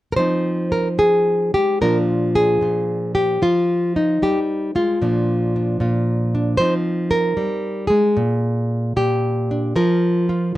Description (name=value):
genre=solo jazz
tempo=75 BPM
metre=4/4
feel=swing 67% on 8ths, rubato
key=unclear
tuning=A4 = 440 Hz
part: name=nylon-string guitar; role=solo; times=0.1-10.6 s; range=Bb2 to C5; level=-17 LUFS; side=equal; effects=none
room=light reverb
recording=dark, warm production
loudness=-17 LUFS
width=side -15 dB against mid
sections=0.2-10.6 A section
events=none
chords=0.2 Fm7; 1.8 Bb7; 3.4 Fm9; 5.0 Bb; 6.6 Fm9; 8.2 Bb7; 9.8 N.C.